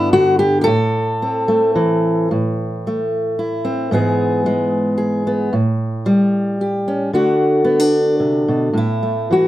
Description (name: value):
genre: folk, solo fingerstyle acoustic guitar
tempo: 112 BPM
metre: 3/4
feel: rubato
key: A dorian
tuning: A4 = 445 Hz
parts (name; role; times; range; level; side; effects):
- fingerpicked steel-string acoustic guitar; solo; 0.0-9.5 s; G2 to A4; -15 LUFS; equal; none
room: moderate small room reverb, RT60 0.5 s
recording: none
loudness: -15 LUFS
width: side -14 dB against mid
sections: 0.0-2.3 A section; 2.3-8.8 B section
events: none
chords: 0.0 G; 0.7 Am; 3.9 E/G#; 5.5 A7; 7.1 D; 8.8 A5